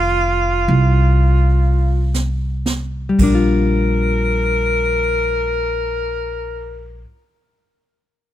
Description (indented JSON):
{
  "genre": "jazz ballad",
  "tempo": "36-45 BPM",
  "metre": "4/4",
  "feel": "swing 67% on 8ths",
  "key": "Bb major",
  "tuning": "A4 = 440 Hz",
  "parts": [
    { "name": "breathy tenor saxophone", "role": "melody", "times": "0.0-7.1 s", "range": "F4 to Bb4", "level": "-20 LUFS", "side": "equal", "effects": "none" },
    { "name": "hollow-body jazz guitar", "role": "accompaniment", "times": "0.0-7.2 s", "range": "Eb3 to F4", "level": "-20 LUFS", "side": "left 3 dB", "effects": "none" },
    { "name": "upright bass", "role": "bass", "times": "0.0-7.0 s", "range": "F1 to C2", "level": "-17 LUFS", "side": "equal", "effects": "none" },
    { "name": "jazz brush drum kit", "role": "drums", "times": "0.7-3.4 s", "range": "brushed snare drum, crash cymbal, hi-hat, kick drum, snare drum", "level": "-23 LUFS", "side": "right 2 dB", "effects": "none" }
  ],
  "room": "little or no reverb",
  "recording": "close, detailed microphones",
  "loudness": "-15 LUFS",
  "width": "side -12 dB against mid",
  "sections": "0.0-3.7 A section; 3.7-8.3 B section",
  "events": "slowing down 0.0-3.7; drum fill 2.1-3.7",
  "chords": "0.0 F7sus4; 2.9 Bb6",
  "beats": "0.69 2.14 | 3.73 5.41 7.07"
}